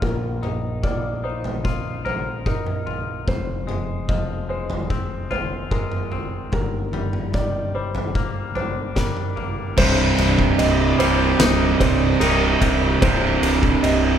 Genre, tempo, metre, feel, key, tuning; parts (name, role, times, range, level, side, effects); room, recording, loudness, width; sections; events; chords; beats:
post-rock; 74 BPM; 4/4; straight; C minor; A4 = 440 Hz
felt-muted upright piano; arpeggios; 0.0-14.2 s; Bb4 to Eb5; -28 LUFS; equal
twangy electric guitar; arpeggios; 0.0-14.2 s; C2 to Bb4; -28 LUFS; left 6 dB
growling picked electric bass; bass; 0.0-14.2 s; C1 to Bb1; -26 LUFS; equal; overdrive
oversized low-tuned drum kit; drums; 0.0-14.0 s; crash cymbal, kick drum, ride cymbal, snare drum, toms; -24 LUFS; equal
distorted electric guitar; riff; 9.8-14.2 s; C2 to C3; -19 LUFS; right 5 dB; distortion
moderate scoring stage reverb, RT60 2.0 s; recorded in a church or concert hall; -19 LUFS; side -9 dB against mid
0.0-9.8 A section; 9.8-14.2 B section
0.0 Bbsus4; 3.3 Fm7; 6.5 Ebmaj7/G; 9.8 Cm
| 0.02 0.83 1.65 2.46 | 3.27 4.09 4.90 5.71 | 6.53 7.34 8.15 8.97 | 9.78 10.59 11.40 12.21 | 13.02 13.83